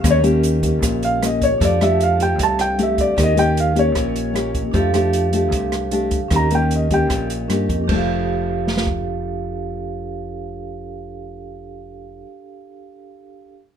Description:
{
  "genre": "bossa nova",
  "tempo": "153 BPM",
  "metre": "4/4",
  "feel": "straight",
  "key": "F major",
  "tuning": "A4 = 439 Hz",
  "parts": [
    { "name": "warm baby grand piano", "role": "melody", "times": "0.0-7.3 s", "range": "Db5 to Bb5", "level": "-20 LUFS", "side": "equal", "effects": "none" },
    { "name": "nylon-string guitar", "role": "accompaniment", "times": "0.0-12.3 s", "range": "Bb2 to G4", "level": "-22 LUFS", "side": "left 4 dB", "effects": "none" },
    { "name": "vibraphone with medium hard mallets", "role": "accompaniment", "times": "0.0-13.5 s", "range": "Db4 to F5", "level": "-26 LUFS", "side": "right 6 dB", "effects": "none" },
    { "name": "fingered electric bass", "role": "bass", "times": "0.0-12.2 s", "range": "F1 to G2", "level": "-22 LUFS", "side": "equal", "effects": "none" },
    { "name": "open jazz drum kit", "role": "drums", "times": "0.0-9.0 s", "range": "crash cymbal, hi-hat, kick drum, rim click, snare drum", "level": "-25 LUFS", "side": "right 1 dB", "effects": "none" },
    { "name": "egg shaker", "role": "percussion", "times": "0.1-1.6 s", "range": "none", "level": "-32 LUFS", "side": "right 9 dB", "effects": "none" }
  ],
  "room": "light reverb",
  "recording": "minimal, uncompressed stereo recording",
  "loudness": "-16 LUFS",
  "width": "side -8 dB against mid",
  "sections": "0.0-7.9 A section; 7.9-11.0 B section",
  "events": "grand piano solo 0.0-7.9",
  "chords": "0.0 Eb7; 1.6 F69; 3.2 Eb7; 4.7 F69; 6.3 Eb7; 7.9 F69"
}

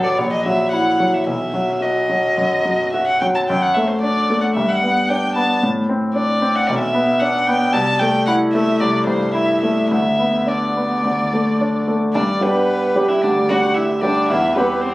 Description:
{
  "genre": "quick classical-period movement for piano quartet",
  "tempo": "104-116 BPM",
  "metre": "4/4",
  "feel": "rubato",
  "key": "G major from 3.5 s",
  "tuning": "A4 = 440 Hz",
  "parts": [
    { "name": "warm violin", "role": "melody", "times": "0.0-14.9 s", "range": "B4 to A5", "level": "-20 LUFS", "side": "equal", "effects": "none" },
    { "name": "bright concert grand piano", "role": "accompaniment", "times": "0.0-14.9 s", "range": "A1 to G4", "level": "-17 LUFS", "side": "equal", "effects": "none" },
    { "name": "dark cello", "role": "second line", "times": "12.1-14.9 s", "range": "B3 to F#4", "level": "-30 LUFS", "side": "right 3 dB", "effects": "none" },
    { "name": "warm violin", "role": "second line", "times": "12.1-14.9 s", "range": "B3 to F#4", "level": "-24 LUFS", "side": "equal", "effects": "none" }
  ],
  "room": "moderate studio reverb, RT60 0.5 s",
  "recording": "recorded on a phone in the room, club reverb, compression",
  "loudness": "-15 LUFS",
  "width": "side -18 dB against mid",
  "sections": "0.0-12.2 A section; 12.2-14.9 B section",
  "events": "none",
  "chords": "0.2 F#7/A#; 1.3 B; 3.5 D/F#; 4.6 G; 5.6 D5/A; 6.7 Bmadd11; 7.7 Am7/C; 9.9 Bmadd11/D; 11.0 D5; 12.2 G; 14.3 C/E"
}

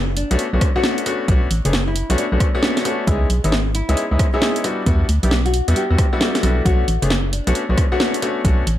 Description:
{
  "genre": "UK garage, two-step garage",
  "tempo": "134 BPM",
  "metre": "4/4",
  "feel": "swing 64% on 16ths",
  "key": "B dorian",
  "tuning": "A4 = 436 Hz",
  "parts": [
    { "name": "organ-like FM bass", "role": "bass", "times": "0.0-8.8 s", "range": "F#1 to E2", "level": "-18 LUFS", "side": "equal", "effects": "none" },
    { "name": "nylon-string guitar", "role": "melody", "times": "0.2-8.1 s", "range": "D4 to A4", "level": "-26 LUFS", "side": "left 2 dB", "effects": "ping-pong delay" },
    { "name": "house drum kit", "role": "drums", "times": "0.2-8.8 s", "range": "hi-hat, rim click, snare drum", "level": "-22 LUFS", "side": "right 1 dB", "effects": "none" },
    { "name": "bright grand piano", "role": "stabs", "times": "0.3-8.6 s", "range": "G3 to G#4", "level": "-22 LUFS", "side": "left 2 dB", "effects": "tape echo" },
    { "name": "electronic kick drum", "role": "drums", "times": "0.6-8.6 s", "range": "none", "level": "-18 LUFS", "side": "equal", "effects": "overdrive" }
  ],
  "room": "little or no reverb",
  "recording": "vinyl crackle",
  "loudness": "-16 LUFS",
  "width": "side -12 dB against mid",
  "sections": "0.0-8.8 A section",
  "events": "none",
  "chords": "0.0 Bm9; 3.1 C#m9; 4.6 Em9; 6.7 Bm9"
}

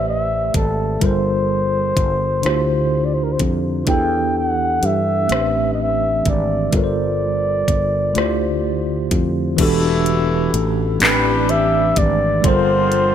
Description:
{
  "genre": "slow six-eight R&B",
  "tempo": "42 BPM (dotted quarters)",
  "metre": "6/8",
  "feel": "straight",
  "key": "E phrygian",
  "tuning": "A4 = 440 Hz",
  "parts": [
    { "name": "breathy flugelhorn", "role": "melody", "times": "0.0-13.1 s", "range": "A4 to G5", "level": "-20 LUFS", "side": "equal", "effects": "none" },
    { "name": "tine electric piano", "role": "accompaniment", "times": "0.0-13.1 s", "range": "D3 to D5", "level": "-21 LUFS", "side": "equal", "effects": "medium stereo tremolo" },
    { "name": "sustaining fretless electric bass", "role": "bass", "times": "0.0-13.1 s", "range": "E1 to G2", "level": "-22 LUFS", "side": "equal", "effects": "none" },
    { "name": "smooth R&B drum kit", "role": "drums", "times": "0.5-13.1 s", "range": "crash cymbal, handclaps, hi-hat, kick drum, rim click", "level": "-20 LUFS", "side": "equal", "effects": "none" },
    { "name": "warm horn section", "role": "stabs", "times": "9.6-13.1 s", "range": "B2 to G4", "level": "-24 LUFS", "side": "left 5 dB", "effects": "ping-pong delay" }
  ],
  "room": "light reverb",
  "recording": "bright 1980s-style digital production",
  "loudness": "-15 LUFS",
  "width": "side -9 dB against mid",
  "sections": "0.0-9.6 A section; 9.6-13.1 B section",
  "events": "none",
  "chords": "0.0 Am11; 1.0 Gm11; 2.4 Dm11; 3.9 Em7; 5.3 Am11; 6.7 Gm11; 8.2 Dm11; 9.6 Em11; 11.0 Am11; 12.4 Gm11"
}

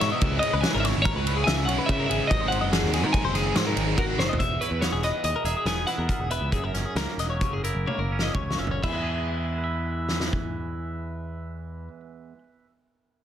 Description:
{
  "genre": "math rock and midwest emo",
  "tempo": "119-144 BPM",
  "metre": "5/4",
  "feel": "straight",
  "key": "E lydian",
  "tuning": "A4 = 440 Hz",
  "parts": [
    { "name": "twelve-string electric guitar", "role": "melody", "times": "0.0-11.9 s", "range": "A#4 to G#5", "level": "-29 LUFS", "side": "equal", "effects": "slapback echo, plate reverb" },
    { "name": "twelve-string electric guitar", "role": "arpeggios", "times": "0.0-12.0 s", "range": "E4 to E5", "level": "-31 LUFS", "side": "left 7 dB", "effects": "plate reverb" },
    { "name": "crunchy overdriven guitar", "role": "riff", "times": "0.0-4.4 s", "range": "G#2 to E4", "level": "-30 LUFS", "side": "right 2 dB", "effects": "none" },
    { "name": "picked electric bass", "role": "bass", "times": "0.0-11.9 s", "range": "E1 to C#3", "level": "-29 LUFS", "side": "equal", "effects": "none" },
    { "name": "loose indie drum kit", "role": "drums", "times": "0.0-10.4 s", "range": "crash cymbal, hi-hat, kick drum, ride cymbal, snare drum, toms", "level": "-28 LUFS", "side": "equal", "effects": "none" },
    { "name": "twangy electric guitar", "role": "accompaniment", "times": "4.4-12.7 s", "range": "E2 to E5", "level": "-34 LUFS", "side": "right 6 dB", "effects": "spring reverb, plate reverb" }
  ],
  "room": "light reverb",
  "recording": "dense, heavily limited modern master",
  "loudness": "-23 LUFS",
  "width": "side -10 dB against mid",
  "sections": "0.0-4.4 A section; 4.4-8.8 B section; 8.8-13.2 C section",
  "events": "drum fill 4.2, 7.9-8.8; slowing down 5.2-8.8",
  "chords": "0.2 C#m7; 2.3 G#7; 4.4 E; 6.5 F#7; 8.8 E"
}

